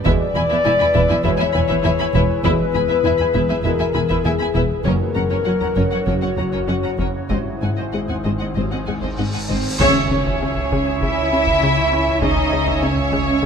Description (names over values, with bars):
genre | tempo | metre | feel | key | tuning
cinematic, suspense film score | 99 BPM | 4/4 | straight | C# minor from 9.8 s | A4 = 441 Hz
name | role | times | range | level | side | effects
bubbling stepped-filter texture | sustained chords | 0.0-13.5 s | F#4 to G#5 | -30 LUFS | right 3 dB | chorus, built-in reverb
warm French horn section | sustained chords | 0.0-9.1 s | E4 to D5 | -21 LUFS | left 6 dB | none
overtone-sweeping drone | drone | 0.0-13.5 s | F#1 to E2 | -28 LUFS | equal | chorus, built-in reverb
warm studio violin section | melody | 0.1-13.5 s | B#4 to B5 | -28 LUFS | left 2 dB | none
dark studio violin section | second line | 0.1-13.5 s | A#4 to G#5 | -27 LUFS | equal | none
warm studio viola section | accompaniment | 0.1-13.5 s | B#3 to E5 | -26 LUFS | right 1 dB | none
clear trombone section | sustained chords | 0.1-8.8 s | B2 to G#3 | -31 LUFS | right 7 dB | none
plucky analog bass | riff | 0.1-13.5 s | E2 to C#4 | -24 LUFS | left 3 dB | none
dark studio cello section | bass | 0.1-13.5 s | E2 to E4 | -25 LUFS | right 3 dB | none
dark studio double bass section | bass | 0.1-13.5 s | E1 to C#2 | -26 LUFS | right 4 dB | none
taiko ensemble | drums | 0.1-13.5 s | none | -27 LUFS | right 1 dB | none
timpani | percussion | 4.8-5.7 s | F#2 | -28 LUFS | left 1 dB | none
cymbal swell and impact | sound effects | 9.2-12.2 s | none | -29 LUFS | right 1 dB | none
room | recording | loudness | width
light reverb | close, detailed microphones | -16 LUFS | side -7 dB against mid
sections
0.0-9.8 A section; 9.8-13.5 B section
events
cymbal swell 9.2-9.8; band accent 9.8-10.4; impact 9.8-12.2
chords
0.1 E; 4.8 F#; 7.3 G#7; 9.8 C#madd9